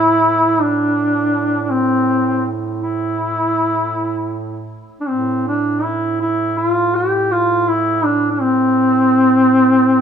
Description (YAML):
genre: caucasian folk, Caucasian lament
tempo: 52-57 BPM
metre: 3/4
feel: rubato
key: A minor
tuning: A4 = 439 Hz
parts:
  - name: mellow duduk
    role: melody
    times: 0.0-10.0 s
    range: C4 to G4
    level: -14 LUFS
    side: equal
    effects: none
  - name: mellow duduk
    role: drone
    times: 0.0-10.0 s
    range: A2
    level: -23 LUFS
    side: right 4 dB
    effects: none
room: light reverb, small room ambience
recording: rough home demo mix, studio reverb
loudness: -14 LUFS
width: side -8 dB against mid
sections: 0.0-10.0 A section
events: none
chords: none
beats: 0.60 | 1.69 2.80 3.94 | 5.07 6.19 7.30 | 8.38 9.44